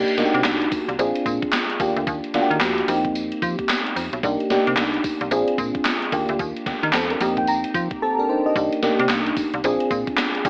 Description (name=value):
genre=R&B, new jack swing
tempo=111 BPM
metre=4/4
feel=swing 62% on 16ths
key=C minor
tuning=A4 = 437 Hz
part: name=FM electric piano with soft pad layer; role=accompaniment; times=0.0-10.5 s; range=Bb3 to Bb5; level=-24 LUFS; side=equal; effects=chorus, phaser
part: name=slap-like FM bass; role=bass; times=0.0-10.5 s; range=Bb1 to F3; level=-28 LUFS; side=equal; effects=none
part: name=gated 80s digital drum machine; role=drums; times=0.1-10.5 s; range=handclaps, hi-hat, kick drum, snare drum, tambourine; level=-27 LUFS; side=equal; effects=gated reverb, gated reverb snare
room=light reverb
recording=AM radio sound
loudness=-22 LUFS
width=mono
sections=0.0-10.5 A section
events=FM electric piano fill 6.9-8.6; silent gap 8.0-8.6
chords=0.0 Cm9; 1.0 Bb7; 1.8 Ebmaj9; 2.9 F9sus4; 4.2 Cm9; 5.3 Bb7; 6.1 Ebmaj9; 7.2 F9sus4; 8.6 Cm9; 9.6 Bb7